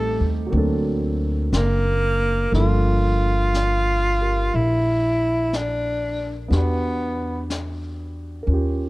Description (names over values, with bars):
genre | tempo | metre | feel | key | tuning
jazz ballad | 61 BPM | 4/4 | swing 68% on 8ths | unclear | A4 = 440 Hz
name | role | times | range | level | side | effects
breathy tenor saxophone | melody | 0.0-7.5 s | Bb3 to A4 | -22 LUFS | equal | none
warm upright piano | accompaniment | 0.0-8.9 s | F3 to Bb4 | -28 LUFS | right 2 dB | none
upright bass | bass | 0.0-8.9 s | F#1 to E2 | -22 LUFS | equal | none
jazz brush drum kit | drums | 0.5-8.9 s | brushed snare drum, hi-hat, snare drum | -32 LUFS | left 2 dB | none
room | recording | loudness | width
little or no reverb | dark, warm production | -19 LUFS | side -20 dB against mid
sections
0.0-2.5 A section; 2.5-8.9 B section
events
tenor saxophone solo 0.0-2.5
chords
0.0 Am7b5; 0.5 D7b13; 2.5 Gm9; 6.5 Em9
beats
0.53 1.53 | 2.53 3.53 4.53 5.51 | 6.50 7.49 8.47